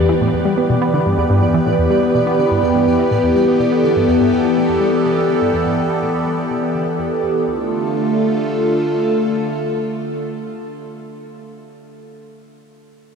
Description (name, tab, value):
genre	ambient, sequencer-driven space music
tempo	124 BPM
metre	4/4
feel	straight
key	D dorian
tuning	A4 = 441 Hz
part	phased analog pad	sustained chords	0.0-11.2 s	D3 to B4	-16 LUFS	equal	phaser, chorus
part	tight sequenced synth	riff	0.0-7.7 s	D2 to B3	-20 LUFS	equal	chorus, ping-pong delay
part	pulsing gated texture	texture	0.0-7.5 s	D5	-25 LUFS	right 6 dB	chorus, built-in reverb
room	wet huge ambient reverb, RT60 6.9 s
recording	none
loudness	-14 LUFS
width	side -6 dB against mid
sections	0.0-7.5 A section; 7.5-11.3 B section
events	fade-out on synth arpeggio sound 0.0-7.5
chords	0.0 Em; 7.5 Dm